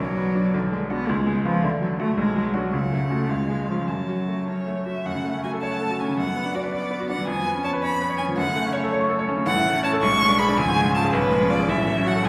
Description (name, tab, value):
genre	quick classical-period movement for piano trio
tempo	109 BPM (dotted quarters)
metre	6/8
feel	rubato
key	F# minor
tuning	A4 = 440 Hz
part	rich violin	melody	0.0-12.3 s	B4 to C#6	-28 LUFS	equal	none
part	rich cello	second line	0.0-12.3 s	C#3 to B3	-29 LUFS	equal	none
part	bright baby grand piano	accompaniment	0.0-12.3 s	A1 to C#6	-26 LUFS	equal	none
room	wet scoring stage reverb, RT60 1.9 s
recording	heard from further back in the room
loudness	-23 LUFS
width	mono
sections	0.0-5.1 A section; 5.1-12.3 B section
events	none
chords	0.0 Bm; 0.5 G#m7b5/B; 1.1 C#7; 1.6 D; 2.2 Bm; 2.7 F#m/C#; 3.3 C#; 3.9 F#m; 6.2 Bm/F#; 7.3 C#7/E#; 8.4 F#m; 9.5 F#m/A; 10.0 G#dim/B; 10.6 C#; 11.1 C#7/B; 11.7 F#m/A